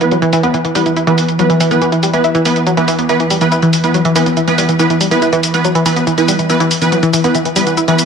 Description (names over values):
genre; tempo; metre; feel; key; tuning
driving peak-time techno; 141 BPM; 4/4; straight; unclear; A4 = 440 Hz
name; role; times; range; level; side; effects
rave stab; stabs; 0.0-8.0 s; E3 to B4; -15 LUFS; right 2 dB; chorus, built-in reverb, ping-pong delay
deep dark ambient pad; drone; 0.0-8.1 s; E3; -19 LUFS; equal; chorus, built-in reverb
electronic hi-hat and shaker; drums; 0.0-8.1 s; none; -20 LUFS; equal; low-pass filter on hats, low-pass filter on perc, low-pass filter on cymbals, low-pass filter on snare, low-pass filter on room
analog pluck; riff; 0.1-7.9 s; E3 to E4; -14 LUFS; left 1 dB; chorus, phaser, ping-pong delay
room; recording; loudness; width
moderate lush hall reverb, RT60 2.1 s; none; -10 LUFS; side -6 dB against mid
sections
0.0-8.1 A section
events
none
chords
0.0 E5